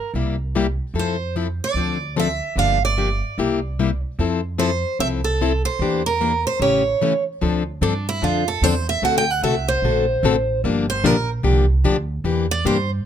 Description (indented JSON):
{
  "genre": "acoustic string swing (jazz manouche)",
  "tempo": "148 BPM",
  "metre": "4/4",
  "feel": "swing 62% on 8ths",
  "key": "unclear",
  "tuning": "A4 = 440 Hz",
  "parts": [
    { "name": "picked steel-string acoustic guitar", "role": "melody", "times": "0.0-12.9 s", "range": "D4 to G5", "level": "-22 LUFS", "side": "right 4 dB", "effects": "plate reverb" },
    { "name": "picked plugged-in steel-string acoustic guitar", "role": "accompaniment", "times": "0.1-12.8 s", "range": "C3 to A4", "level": "-21 LUFS", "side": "left 6 dB", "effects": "none" },
    { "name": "upright bass", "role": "bass", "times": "0.1-13.0 s", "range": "G1 to G2", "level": "-23 LUFS", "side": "right 2 dB", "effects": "none" }
  ],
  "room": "light reverb",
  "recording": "close, detailed microphones",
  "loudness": "-18 LUFS",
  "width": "side -9 dB against mid",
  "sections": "0.0-7.4 A section; 7.4-13.1 B section",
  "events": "break 7.0-7.4; steel-string acoustic guitar solo 7.4-13.1",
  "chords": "0.1 C7; 0.9 Fmaj7; 1.8 Dm9; 2.6 Gm7; 3.4 C7; 4.2 Fmaj7; 5.8 Em7b5; 6.6 A7; 7.4 Dm7; 9.0 D7; 10.6 Gm7; 12.2 Em7b5",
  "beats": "0.13 0.54 | 0.94 1.34 1.75 2.15 | 2.56 2.96 3.37 3.77 | 4.18 4.58 4.99 5.39 | 5.80 6.20 6.61 7.01 | 7.41 7.82 8.22 8.62 | 9.03 9.43 9.83 10.24 | 10.64 11.04 11.44 11.85 | 12.25 12.65"
}